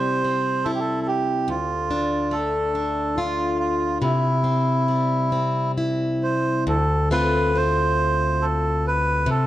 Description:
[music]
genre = celtic folk, Celtic slow air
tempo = 69 BPM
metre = 3/4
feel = uneven beats, rubato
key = D dorian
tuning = A4 = 440 Hz
[part]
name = melodica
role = melody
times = 0.0-9.5 s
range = E4 to C5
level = -23 LUFS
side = right 2 dB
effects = none
[part]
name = picked plugged-in steel-string acoustic guitar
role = accompaniment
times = 0.0-9.5 s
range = D2 to F4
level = -22 LUFS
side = left 1 dB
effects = none
[sound]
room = moderate recital hall reverb, RT60 1.3 s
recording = dark, warm production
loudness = -20 LUFS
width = side -14 dB against mid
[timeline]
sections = 0.0-6.7 A section; 6.7-9.5 B section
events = none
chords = 0.0 C; 1.5 Dm; 4.0 C; 6.7 Dm7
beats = 0.65 | 1.48 2.31 3.16 | 4.01 4.87 5.76 | 6.66 7.56 8.43 | 9.27

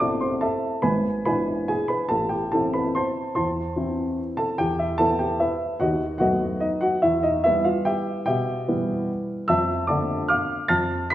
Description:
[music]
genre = classical, piano waltz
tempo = 146 BPM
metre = 3/4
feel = uneven beats, rubato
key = A minor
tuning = A4 = 444 Hz
[part]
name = warm upright piano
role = solo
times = 0.0-11.1 s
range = G#1 to B6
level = -21 LUFS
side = equal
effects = none
[sound]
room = wet recital hall reverb, RT60 1.3 s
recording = heard from further back in the room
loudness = -21 LUFS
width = side -13 dB against mid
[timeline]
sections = 0.0-11.1 A section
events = none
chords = 0.0 Am; 0.8 E7/G#; 2.1 Am; 4.6 Em; 5.8 B7/D#; 7.0 Em; 9.5 Dm/F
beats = 0.01 0.43 | 0.85 1.26 1.70 | 2.12 2.54 2.96 | 3.37 3.77 4.18 | 4.60 5.00 5.42 | 5.81 6.21 6.63 | 7.04 7.46 7.88 | 8.28 8.68 9.09 | 9.49 9.90 10.31 | 10.71 11.12

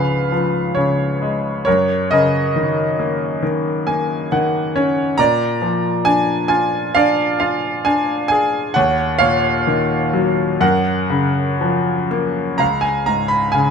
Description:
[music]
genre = classical, lyrical solo piano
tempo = 58-70 BPM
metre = 4/4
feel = rubato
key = F# major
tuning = A4 = 441 Hz
[part]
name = bright grand piano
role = solo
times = 0.0-13.7 s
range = C#2 to B5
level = -15 LUFS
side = equal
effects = none
[sound]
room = moderate studio reverb, RT60 0.8 s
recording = minimal, uncompressed stereo recording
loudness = -15 LUFS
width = side -6 dB against mid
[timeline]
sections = 0.0-12.6 A section; 12.6-13.7 B section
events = grand piano fill 3.4-5.2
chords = 0.0 C#7; 1.7 F#6; 5.2 A#7; 8.8 D#m9; 10.6 F#maj7; 12.6 C#7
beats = 0.77 | 1.67 2.55 3.42 4.31 | 5.19 6.06 6.95 7.86 | 8.77 9.68 10.62 11.62 | 12.61 13.56

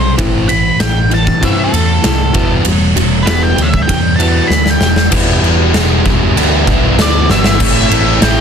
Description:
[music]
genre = quiet-loud alternative rock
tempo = 97 BPM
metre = 4/4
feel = straight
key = unclear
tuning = A4 = 443 Hz
[part]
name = octave-fuzz lead guitar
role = melody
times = 0.0-8.4 s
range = A4 to B5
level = -17 LUFS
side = equal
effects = distortion
[part]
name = electric guitar through a small old amp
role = arpeggios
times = 0.0-5.1 s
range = E2 to C4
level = -22 LUFS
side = left 1 dB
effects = none
[part]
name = fuzz guitar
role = riff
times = 0.0-8.4 s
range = A2 to E4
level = -15 LUFS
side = equal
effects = distortion
[part]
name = overdriven picked electric bass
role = bass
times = 0.0-8.4 s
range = E1 to G2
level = -15 LUFS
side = equal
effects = none
[part]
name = oversized low-tuned drum kit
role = drums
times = 0.2-8.4 s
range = crash cymbal, kick drum, ride cymbal, snare drum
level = -14 LUFS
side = equal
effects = none
[part]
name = fuzz guitar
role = riff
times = 7.6-8.4 s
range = A2 to A3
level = -17 LUFS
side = right 1 dB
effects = distortion
[sound]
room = little or no reverb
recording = dense, heavily limited modern master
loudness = -9 LUFS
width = side -7 dB against mid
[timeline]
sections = 0.0-5.1 A section; 5.1-7.6 B section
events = lead electric guitar solo 0.0-5.1; drum fill 4.5-5.1, 7.3-7.6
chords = 0.2 Am; 2.3 Em7; 7.6 Am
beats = | 0.18 0.80 1.42 2.04 | 2.66 3.28 3.90 4.51 | 5.13 5.75 6.37 6.99 | 7.61 8.22

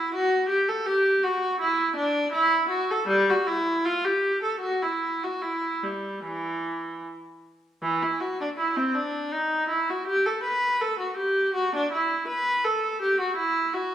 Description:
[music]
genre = classical, baroque-style suite movement for unaccompanied viola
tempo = 73-85 BPM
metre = 3/4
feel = rubato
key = E minor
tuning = A4 = 439 Hz
[part]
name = rich viola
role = solo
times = 0.0-13.9 s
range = E3 to B4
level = -23 LUFS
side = equal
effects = none
[sound]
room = wet stone room reverb, RT60 1.3 s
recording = heard from further back in the room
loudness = -23 LUFS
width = side -10 dB against mid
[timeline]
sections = 0.0-7.8 A section; 7.8-13.9 B section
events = none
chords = none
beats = 0.14 | 0.85 1.59 2.32 | 3.08 3.84 4.61 | 5.41 6.23 7.04 | 7.83 8.59 9.33 | 10.07 10.81 11.56 | 12.30 13.02 13.74

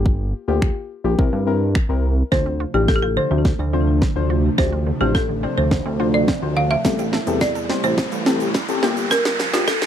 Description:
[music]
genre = dance-pop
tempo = 106 BPM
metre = 4/4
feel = straight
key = unclear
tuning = A4 = 444 Hz
[part]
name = deep mellow chord stab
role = accompaniment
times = 0.0-9.7 s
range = Bb3 to C5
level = -25 LUFS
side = left 10 dB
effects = chorus, sidechain pumping
[part]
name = chorused synth bass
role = bass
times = 0.0-9.9 s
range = G1 to G2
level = -21 LUFS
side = right 1 dB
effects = sidechain pumping
[part]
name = house drum kit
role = drums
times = 0.1-9.9 s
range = finger snaps, hi-hat, kick drum, shaker, snare drum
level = -20 LUFS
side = equal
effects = none
[part]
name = folk marimba with hard mallets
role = melody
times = 2.3-9.9 s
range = F4 to F5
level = -23 LUFS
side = right 1 dB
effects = tape echo
[part]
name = airy breathy pad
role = sustained chords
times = 2.3-9.9 s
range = C3 to F4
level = -28 LUFS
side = right 2 dB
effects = chorus, sidechain pumping
[part]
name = wide unison pluck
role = arpeggios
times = 2.3-9.9 s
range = D3 to A4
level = -29 LUFS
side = right 7 dB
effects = sidechain pumping, tape echo
[part]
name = riser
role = sound effects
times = 3.9-9.9 s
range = none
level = -29 LUFS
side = right 2 dB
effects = none
[part]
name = egg shaker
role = percussion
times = 6.8-9.9 s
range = none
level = -40 LUFS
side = right 16 dB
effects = none
[sound]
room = little or no reverb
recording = dry, close 1970s-style studio recording, high-pass filter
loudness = -17 LUFS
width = side -9 dB against mid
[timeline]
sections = 0.0-2.3 A section; 2.3-9.9 B section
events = build-up 2.3-9.9; drum fill 2.3-9.9; filter sweep 2.3-9.9; riser 3.9-9.9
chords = 0.0 Gm7; 1.2 C7; 2.3 Dm7; 6.8 Am7; 8.8 Gm7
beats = | 0.06 0.62 1.19 1.75 | 2.32 2.89 3.45 4.02 | 4.58 5.15 5.72 6.28 | 6.85 7.42 7.98 8.55 | 9.11 9.68

